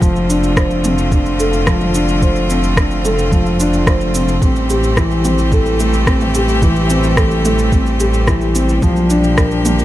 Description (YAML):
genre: piano and strings electronica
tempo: 109 BPM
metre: 4/4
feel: straight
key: unclear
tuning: A4 = 441 Hz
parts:
  - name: clear string quartet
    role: sustained chords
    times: 0.0-9.8 s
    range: D3 to G4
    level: -20 LUFS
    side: left 1 dB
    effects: sidechain pumping
  - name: felt-muted upright piano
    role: riff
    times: 0.0-9.8 s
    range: E3 to C5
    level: -16 LUFS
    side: equal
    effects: ping-pong delay
  - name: dark detuned saw bass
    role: bass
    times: 0.0-9.8 s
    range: F1 to Bb1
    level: -18 LUFS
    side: equal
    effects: sidechain pumping
  - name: electronic kick drum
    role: drums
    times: 0.0-9.5 s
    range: none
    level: -15 LUFS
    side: equal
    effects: studio reverb
  - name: organic electronic drum kit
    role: drums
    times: 0.0-9.8 s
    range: rim click, shaker, toms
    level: -22 LUFS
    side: right 1 dB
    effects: studio reverb
room: little or no reverb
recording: none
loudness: -12 LUFS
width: side -14 dB against mid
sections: 0.0-9.8 A section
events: none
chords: 0.0 F6; 4.4 Am7; 8.8 Gm7/Bb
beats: | 0.02 0.57 1.12 1.67 | 2.22 2.77 3.32 3.87 | 4.42 4.97 5.52 6.07 | 6.62 7.17 7.72 8.28 | 8.83 9.38